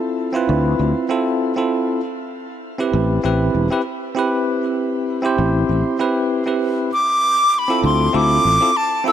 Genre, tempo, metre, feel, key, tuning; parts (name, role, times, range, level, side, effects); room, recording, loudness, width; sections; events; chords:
sunset chillout; 98 BPM; 4/4; swing 54% on 16ths; D dorian; A4 = 440 Hz
bell-like tine electric piano; accompaniment; 0.0-9.1 s; C4 to C5; -19 LUFS; right 1 dB; auto-pan, shimmer reverb, digital delay
sustaining fretless electric bass; bass; 0.5-8.6 s; E1 to D2; -18 LUFS; equal; tube saturation, analog chorus
bright reedy wooden flute; melody; 6.9-9.1 s; A5 to E6; -15 LUFS; equal; shimmer reverb
moderate plate reverb, RT60 2.5 s; -16 LUFS; side -10 dB against mid
0.0-9.1 A section
0.0 Dm9; 2.0 Am7; 6.9 Dm9